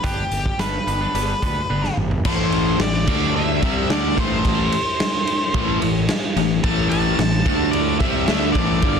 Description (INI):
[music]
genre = quiet-loud alternative rock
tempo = 110 BPM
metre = 4/4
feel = straight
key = A minor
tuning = A4 = 441 Hz
[part]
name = octave-fuzz lead guitar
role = melody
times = 0.0-9.0 s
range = G4 to A5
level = -25 LUFS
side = left 1 dB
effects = distortion, slapback echo
[part]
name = twangy electric guitar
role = arpeggios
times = 0.0-2.2 s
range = G3 to B4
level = -29 LUFS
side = right 7 dB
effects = none
[part]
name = fuzz fingered electric bass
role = bass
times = 0.0-9.0 s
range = G1 to D2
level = -25 LUFS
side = equal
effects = overdrive
[part]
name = raw garage drum kit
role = drums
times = 0.0-9.0 s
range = crash cymbal, hi-hat, kick drum, ride cymbal, snare drum, toms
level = -22 LUFS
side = equal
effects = none
[part]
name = fuzz guitar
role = riff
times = 2.3-9.0 s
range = G2 to D4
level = -25 LUFS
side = equal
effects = distortion
[part]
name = overdriven semi-hollow guitar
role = riff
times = 2.3-9.0 s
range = G2 to D4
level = -24 LUFS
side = left 13 dB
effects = spring reverb
[part]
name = raw garage guitar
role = riff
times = 2.3-9.0 s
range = G2 to D4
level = -25 LUFS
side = right 12 dB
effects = overdrive
[sound]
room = light reverb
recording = dense, heavily limited modern master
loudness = -17 LUFS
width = side -6 dB against mid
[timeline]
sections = 0.0-2.3 A section; 2.3-9.0 B section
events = drum fill 1.7-2.3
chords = 0.0 G; 2.3 Am; 3.1 D5; 3.6 Am; 7.5 D5; 8.0 Am